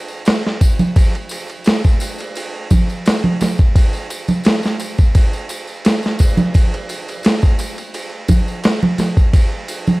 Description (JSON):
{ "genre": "trip hop", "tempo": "86 BPM", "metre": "4/4", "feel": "swing 53% on 16ths", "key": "none", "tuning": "none", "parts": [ { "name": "tambourine and congas", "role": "percussion", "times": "0.1-10.0 s", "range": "none", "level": "-21 LUFS", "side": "right 2 dB", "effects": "none" }, { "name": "dusty soul sampler-style drum kit", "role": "drums", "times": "0.3-9.9 s", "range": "kick drum, ride cymbal, snare drum", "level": "-14 LUFS", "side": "equal", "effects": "overdrive, small room ambience" } ], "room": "little or no reverb", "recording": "dark, warm production, vinyl crackle", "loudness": "-13 LUFS", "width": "side -22 dB against mid", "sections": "0.0-10.0 A section", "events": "none", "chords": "none", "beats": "0.26 | 0.96 1.66 2.36 3.06 | 3.75 4.45 5.15 5.85 | 6.54 7.24 7.94 8.64 | 9.33" }